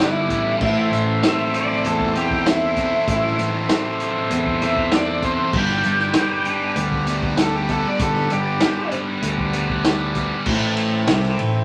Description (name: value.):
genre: psychedelic rock.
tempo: 97 BPM.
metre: 4/4.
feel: straight.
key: A minor.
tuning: A4 = 441 Hz.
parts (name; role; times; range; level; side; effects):
octave-fuzz lead guitar; melody; 0.0-8.9 s; E4 to G5; -25 LUFS; equal; distortion.
hand-pumped harmonium; sustained chords; 0.0-11.6 s; A3 to C6; -29 LUFS; equal; none.
thick fuzz guitar; riff; 0.0-11.6 s; G2 to E4; -26 LUFS; equal; distortion, phaser.
fuzz picked electric bass; bass; 0.0-11.6 s; G1 to E2; -28 LUFS; equal; overdrive.
vintage drum kit; drums; 0.0-11.5 s; crash cymbal, hi-hat, kick drum, ride cymbal, snare drum; -26 LUFS; equal; none.
room: wet small room reverb, RT60 0.5 s.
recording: none.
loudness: -20 LUFS.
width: mono.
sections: 0.0-10.5 A section; 10.5-11.6 B section.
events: lead electric guitar solo 0.0-10.5.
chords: 0.0 G; 0.6 Am; 5.5 G; 10.5 Am.